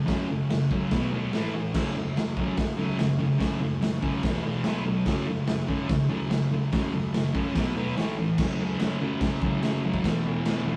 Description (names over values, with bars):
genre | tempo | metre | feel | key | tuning
garage rock duo or trio | 145 BPM | 4/4 | straight | unclear | A4 = 442 Hz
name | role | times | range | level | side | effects
thick fuzz guitar | riff | 0.0-10.8 s | E2 to B3 | -29 LUFS | equal | distortion
raw garage drum kit | drums | 0.1-10.6 s | crash cymbal, hi-hat, kick drum, snare drum | -30 LUFS | equal | none
room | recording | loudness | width
wet studio reverb, RT60 0.6 s | rough rehearsal-room recording, tube saturation | -27 LUFS | mono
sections
0.0-8.4 A section; 8.4-10.8 B section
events
none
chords
0.0 F#5; 0.9 B5; 1.3 A5; 1.7 F#5; 4.2 E5; 4.6 B5; 5.1 F#5; 7.6 B5; 8.0 A5; 8.4 F#5; 10.0 E5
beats
| 0.08 0.49 0.91 1.32 | 1.74 2.16 2.57 2.99 | 3.40 3.82 4.23 4.65 | 5.06 5.48 5.89 6.31 | 6.72 7.14 7.55 7.97 | 8.38 8.80 9.21 9.63 | 10.04 10.46